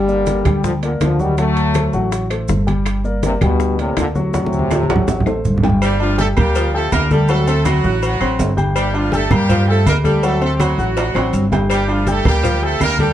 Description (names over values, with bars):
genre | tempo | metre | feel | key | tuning
latin, salsa | 163 BPM | 4/4 | straight | G minor | A4 = 442 Hz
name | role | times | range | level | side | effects
bright trombone section | melody | 0.0-5.4 s | G2 to A3 | -20 LUFS | left 1 dB | none
warm grand piano | accompaniment | 0.0-13.1 s | F#3 to G6 | -22 LUFS | left 2 dB | none
upright bass | bass | 0.0-13.1 s | G1 to G2 | -18 LUFS | equal | none
congas | percussion | 0.1-13.1 s | none | -21 LUFS | right 1 dB | none
maracas | percussion | 0.1-13.1 s | none | -37 LUFS | right 6 dB | none
bongos and cowbell | percussion | 0.3-13.1 s | none | -28 LUFS | left 6 dB | none
timbales and agogo bells | percussion | 0.3-13.0 s | none | -26 LUFS | right 6 dB | none
claves | percussion | 0.5-13.0 s | none | -33 LUFS | left 5 dB | none
brilliant horn section | melody | 5.8-13.1 s | F3 to Bb4 | -21 LUFS | right 2 dB | none
warm saxophone section | second line | 5.8-13.1 s | F3 to G3 | -23 LUFS | left 1 dB | none
room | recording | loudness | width
light reverb | dark, warm production | -14 LUFS | side -11 dB against mid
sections
0.0-5.8 A section; 5.8-13.1 B section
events
drum fill 4.3-5.8, 11.0-11.7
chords
0.0 Gm; 1.4 D7; 2.9 Gm; 4.3 D7; 5.8 Gm7; 7.3 D7; 8.8 Gm7; 10.2 D7; 11.7 Gm7